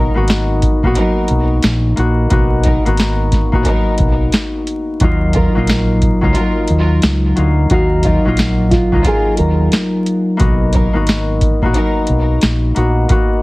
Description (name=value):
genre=hip hop, boom-bap hip-hop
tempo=89 BPM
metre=4/4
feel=swing 63% on 16ths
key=unclear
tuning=A4 = 440 Hz
part: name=concert harp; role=accompaniment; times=0.0-13.4 s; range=Gb3 to F5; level=-17 LUFS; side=left 2 dB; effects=high-pass filter, low-pass filter, plate reverb
part: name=warm symphonic string section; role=stabs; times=0.0-12.0 s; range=F#3 to A#4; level=-23 LUFS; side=right 1 dB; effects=high-pass filter, low-pass filter, plate reverb, digital delay
part: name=deep dub fingered electric bass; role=bass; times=0.0-13.0 s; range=Ab1 to Eb2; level=-16 LUFS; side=equal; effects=none
part: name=booming analog drum machine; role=drums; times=0.3-13.3 s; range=hi-hat, kick drum, snare drum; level=-16 LUFS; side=equal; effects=vintage 12-bit sampler grit
part: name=nylon-string guitar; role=melody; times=5.4-10.4 s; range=Eb4 to Bb4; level=-19 LUFS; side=right 1 dB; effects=high-pass filter, low-pass filter, plate reverb, digital delay
room=light reverb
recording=heavily compressed radio sound, multiband compression, vinyl crackle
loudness=-12 LUFS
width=side -21 dB against mid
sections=0.0-13.4 A section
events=none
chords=0.0 Bmaj7; 5.0 Ebmadd9; 10.4 Bmaj7